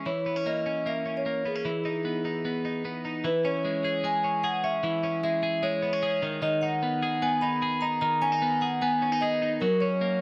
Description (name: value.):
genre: indie pop.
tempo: 151 BPM.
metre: 4/4.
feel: straight.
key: C# dorian.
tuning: A4 = 440 Hz.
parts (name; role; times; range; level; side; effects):
twelve-string electric guitar; arpeggios; 0.0-10.2 s; D#3 to G#4; -32 LUFS; equal; none.
vibraphone with medium mallets; melody; 0.1-10.2 s; G#4 to B5; -30 LUFS; equal; none.
room: moderate spring reverb, RT60 2.4 s.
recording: none.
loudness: -28 LUFS.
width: mono.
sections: 0.0-3.2 A section; 3.2-10.2 B section.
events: none.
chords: 0.1 C#m13/E; 1.7 Emaj7; 3.2 C#m; 6.2 G#m; 9.6 F#add9.